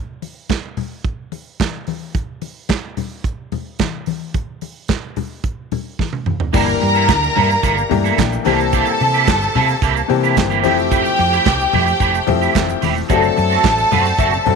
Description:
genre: disco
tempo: 110 BPM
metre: 4/4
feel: straight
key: G dorian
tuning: A4 = 440 Hz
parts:
  - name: modern studio drum kit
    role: drums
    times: 0.2-14.6 s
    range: crash cymbal, handclaps, hi-hat, kick drum, snare drum, toms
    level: -21 LUFS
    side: right 4 dB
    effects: none
  - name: congas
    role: percussion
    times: 0.2-14.6 s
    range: none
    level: -25 LUFS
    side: left 10 dB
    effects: none
  - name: clear symphonic string section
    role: second line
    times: 6.5-14.6 s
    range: G4 to Bb5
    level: -18 LUFS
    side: equal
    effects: none
  - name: electric guitar at the edge of break-up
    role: accompaniment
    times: 6.5-14.5 s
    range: A3 to C5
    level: -21 LUFS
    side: right 14 dB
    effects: ensemble chorus
  - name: warm grand piano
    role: accompaniment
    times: 6.5-14.6 s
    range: E3 to F#5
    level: -20 LUFS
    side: left 13 dB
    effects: none
  - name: hollow-body short-scale fingered electric bass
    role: bass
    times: 6.5-14.6 s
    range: E1 to C3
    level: -21 LUFS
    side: right 1 dB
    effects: none
  - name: tube shaker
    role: percussion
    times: 6.5-14.5 s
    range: none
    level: -40 LUFS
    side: right 20 dB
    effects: none
room: moderate spring reverb, RT60 2.4 s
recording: 1960s-style stereo with parts hard left and right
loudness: -14 LUFS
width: side -5 dB against mid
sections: 0.0-6.5 A section; 6.5-14.6 B section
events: drum fill 6.0-6.5; grand piano fill 13.6-14.6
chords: 0.0 N.C.; 6.5 Gm69; 8.5 C7; 10.6 Fmaj9; 13.1 D7/F#

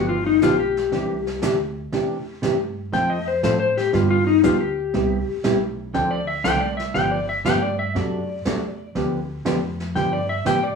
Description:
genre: country, western swing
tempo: 120 BPM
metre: 4/4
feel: swing 69% on 8ths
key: C major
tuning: A4 = 440 Hz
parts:
  - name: clean lap steel guitar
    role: second line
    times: 0.0-10.8 s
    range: Eb4 to G5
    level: -21 LUFS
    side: left 4 dB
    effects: none
  - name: hollow-body jazz guitar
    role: accompaniment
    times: 0.0-10.6 s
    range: C3 to A4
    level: -23 LUFS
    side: right 2 dB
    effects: none
  - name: upright bass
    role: bass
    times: 0.0-10.8 s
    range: G1 to A2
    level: -29 LUFS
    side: equal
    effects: none
  - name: jazz brush drum kit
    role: drums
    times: 0.4-10.8 s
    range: brushed snare drum, hi-hat, snare drum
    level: -32 LUFS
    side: right 2 dB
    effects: none
room: wet studio ambience, RT60 0.5 s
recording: band playing live in one room, studio reverb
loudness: -19 LUFS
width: side -5 dB against mid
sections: 0.0-10.8 A section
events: electric slide guitar solo 0.0-10.8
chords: 0.0 G7; 0.9 Cadd9; 2.9 F; 3.9 G; 4.9 Cmaj7; 5.9 Dm7; 7.0 G7; 8.0 D7/F#; 9.0 G7

